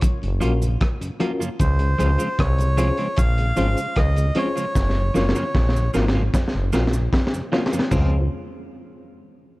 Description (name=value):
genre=roots reggae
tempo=76 BPM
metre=4/4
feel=straight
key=Db major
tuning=A4 = 439 Hz
part: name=crunchy breakbeat drum kit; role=drums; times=0.0-8.1 s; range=hi-hat, kick drum, rim click, snare drum, splash cymbal, toms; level=-23 LUFS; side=equal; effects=vintage 12-bit sampler grit
part: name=cabasa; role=percussion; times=0.0-8.3 s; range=none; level=-39 LUFS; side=right 6 dB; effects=none
part: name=mellow tonewheel organ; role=accompaniment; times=0.2-8.2 s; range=Gb2 to F4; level=-33 LUFS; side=left 1 dB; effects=none
part: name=growling FM bass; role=bass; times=0.2-8.3 s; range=Gb1 to Db2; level=-20 LUFS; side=equal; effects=none
part: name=clean electric guitar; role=accompaniment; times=0.4-8.2 s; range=F3 to F4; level=-30 LUFS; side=right 2 dB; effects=none
part: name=mellow reed electric piano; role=stabs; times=0.4-8.2 s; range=Db4 to C5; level=-29 LUFS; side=left 2 dB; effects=fast tremolo, tube saturation
part: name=melodica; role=melody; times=1.6-5.9 s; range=C5 to F5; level=-27 LUFS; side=equal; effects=none
room=light reverb, small room ambience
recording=dark, warm production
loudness=-18 LUFS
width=side -20 dB against mid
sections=0.0-7.9 A section; 7.9-9.6 B section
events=drum fill 4.8-7.9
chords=0.0 Gbmaj7; 1.6 Dbmaj7; 4.8 Gbmaj7; 7.9 Dbmaj7